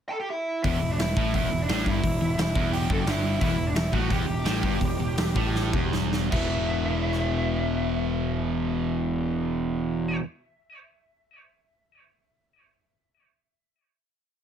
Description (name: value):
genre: punk rock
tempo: 147-174 BPM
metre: 4/4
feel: straight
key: E minor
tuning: A4 = 440 Hz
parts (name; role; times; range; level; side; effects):
- bluesy overdriven lead guitar; melody; 0.1-10.2 s; D4 to A5; -31 LUFS; right 1 dB; distortion, tape echo
- distorted electric guitar; riff; 0.6-10.2 s; E2 to E3; -32 LUFS; right 10 dB; overdrive
- overdriven electric guitar; riff; 0.6-10.2 s; E2 to E3; -31 LUFS; left 10 dB; none
- sludgy distorted guitar; riff; 0.6-10.2 s; E2 to E3; -33 LUFS; right 1 dB; overdrive
- fuzz picked electric bass; bass; 0.6-10.2 s; E1 to A1; -29 LUFS; equal; overdrive
- big rock drum kit; drums; 0.6-7.2 s; crash cymbal, hi-hat, kick drum, rim click, snare drum; -28 LUFS; equal; none
room: light reverb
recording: none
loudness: -23 LUFS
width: side -8 dB against mid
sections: 0.0-0.6 pickup bar; 0.6-6.3 riff; 6.3-9.6 final chord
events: slowing down 3.4-6.3; drum fill 5.6-6.3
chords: 0.0 Em; 6.3 E5